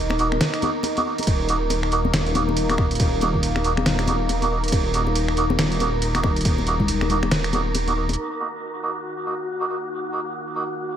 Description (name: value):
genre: deep dubstep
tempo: 139 BPM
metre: 4/4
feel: swing 60% on 16ths, half-time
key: Eb minor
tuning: A4 = 440 Hz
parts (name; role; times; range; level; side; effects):
- deep dark ambient pad; sustained chords; 0.0-11.0 s; Eb4 to Bb5; -28 LUFS; left 1 dB; chorus, built-in reverb
- dark detuned saw bass; bass; 0.0-8.2 s; Eb1; -24 LUFS; equal; none
- wind-like tuned noise texture; texture; 0.0-11.0 s; Gb4 to Bb4; -30 LUFS; right 3 dB; built-in reverb
- trip hop sampler-style drum kit; drums; 0.1-8.2 s; crash cymbal, finger snaps, hi-hat, snare drum; -27 LUFS; right 1 dB; low-pass filter on hats, low-pass filter on cymbals, low-pass filter on snare
- congas; percussion; 0.1-8.2 s; none; -28 LUFS; left 4 dB; dub echo
- melodica; stabs; 0.2-10.6 s; Bb3 to Gb4; -27 LUFS; right 4 dB; low-pass filter, dub echo
- electronic kick drum; drums; 1.3-6.9 s; none; -22 LUFS; equal; none
room: light reverb, digital ambience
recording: none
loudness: -20 LUFS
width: side -9 dB against mid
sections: 0.0-8.2 A section; 8.2-11.0 B section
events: drop 0.0-8.2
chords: 0.0 Ebm